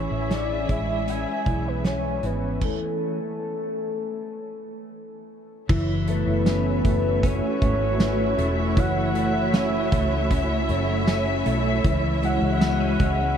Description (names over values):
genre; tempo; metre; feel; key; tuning
dream pop; 78 BPM; 4/4; straight; unclear; A4 = 440 Hz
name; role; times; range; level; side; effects
soft octave-layered synth lead; melody; 0.0-13.4 s; A4 to G#5; -28 LUFS; left 1 dB; chorus, phaser, diffuse ambient delay
dark studio string section; sustained chords; 0.0-13.4 s; E3 to E5; -28 LUFS; right 1 dB; none
clean electric guitar; arpeggios; 0.0-13.4 s; E3 to C#4; -27 LUFS; left 2 dB; ensemble chorus, diffuse ambient delay
vintage muted fingered electric bass; bass; 0.0-13.4 s; E1 to C#2; -26 LUFS; equal; none
loose indie drum kit; drums; 0.3-13.2 s; crash cymbal, hi-hat, kick drum, snare drum, tambourine; -25 LUFS; right 1 dB; none
room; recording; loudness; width
moderate cathedral reverb, RT60 6.0 s; dreamy mix soaked in reverb; -21 LUFS; side -8 dB against mid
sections
0.0-5.7 A section; 5.7-13.4 B section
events
stop 2.6-5.7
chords
0.0 Amaj7; 2.6 N.C.; 5.7 F#m7; 11.8 C#m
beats
0.31 1.08 1.85 | 2.62 3.38 4.16 4.92 | 5.69 6.46 7.23 8.00 | 8.77 9.54 10.31 11.08 | 11.85 12.62